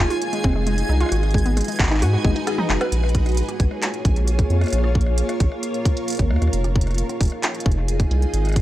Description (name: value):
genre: IDM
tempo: 133 BPM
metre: 4/4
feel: straight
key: Bb minor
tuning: A4 = 440 Hz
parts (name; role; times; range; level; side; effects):
- granular cloud pad; sustained chords; 0.0-8.6 s; Ab3 to Db5; -26 LUFS; equal; built-in reverb, sidechain pumping
- warbly dusty pluck; arpeggios; 0.0-2.9 s; Ab3 to Cb5; -25 LUFS; left 1 dB; chorus, tape echo
- round analog bass; bass; 0.0-8.6 s; F1 to Ab2; -20 LUFS; equal; tube saturation
- backwards swelling texture; texture; 0.0-2.9 s; Ab5; -33 LUFS; right 2 dB; built-in reverb
- organic electronic drum kit; drums; 0.1-8.6 s; handclaps, hi-hat, rim click, snare drum, toms; -27 LUFS; equal; none
- electronic kick drum; drums; 0.4-8.6 s; none; -19 LUFS; equal; none
room: little or no reverb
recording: dry, gritty hardware recording, cassette tape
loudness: -18 LUFS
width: side -14 dB against mid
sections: 0.0-2.9 A section; 2.9-8.6 B section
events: drum fill 2.2-2.9; break 2.5-2.9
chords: 0.0 Fm7; 1.1 Abm7; 2.9 Bbm7; 6.5 Fm7